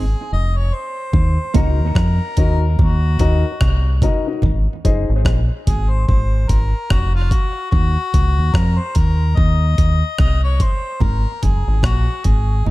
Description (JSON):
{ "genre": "dub reggae", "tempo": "73 BPM", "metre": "4/4", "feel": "swing 59% on 16ths", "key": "Eb dorian", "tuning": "A4 = 441 Hz", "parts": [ { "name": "mellow harmonica", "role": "melody", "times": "0.0-12.7 s", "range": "Eb4 to Eb5", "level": "-25 LUFS", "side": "left 3 dB", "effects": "tape echo" }, { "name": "clean electric guitar", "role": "accompaniment", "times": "0.0-1.7 s", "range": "Bb3 to Bb4", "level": "-25 LUFS", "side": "right 6 dB", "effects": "analog chorus, tape echo" }, { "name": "deep dub fingered electric bass", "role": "bass", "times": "0.0-12.7 s", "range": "F1 to F2", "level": "-16 LUFS", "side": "equal", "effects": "none" }, { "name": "breakbeat sampler-style drum kit", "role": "drums", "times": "1.1-12.5 s", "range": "hi-hat, kick drum, rim click", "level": "-18 LUFS", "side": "equal", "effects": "none" }, { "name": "congas", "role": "percussion", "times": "1.1-4.7, 11.0-12.7 s", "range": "none", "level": "-26 LUFS", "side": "right 3 dB", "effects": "none" }, { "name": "dark upright piano", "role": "stabs", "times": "1.5-5.1 s", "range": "Eb4 to Eb5", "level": "-24 LUFS", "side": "left 5 dB", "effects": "tape echo" } ], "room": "small room reverb", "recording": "dark, warm production", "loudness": "-14 LUFS", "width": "side -18 dB against mid", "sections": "0.0-12.7 A section", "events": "break 0.0-1.1; drums muted 0.3-1.1; part muted 4.4-11.0", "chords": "0.0 Ab; 1.1 Ebm; 4.4 Ab5; 7.7 Ebm; 11.0 Ab5", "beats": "0.32 | 1.14 1.96 2.79 3.61 | 4.43 5.26 6.08 6.90 | 7.73 8.55 9.37 10.20 | 11.02 11.84 12.67" }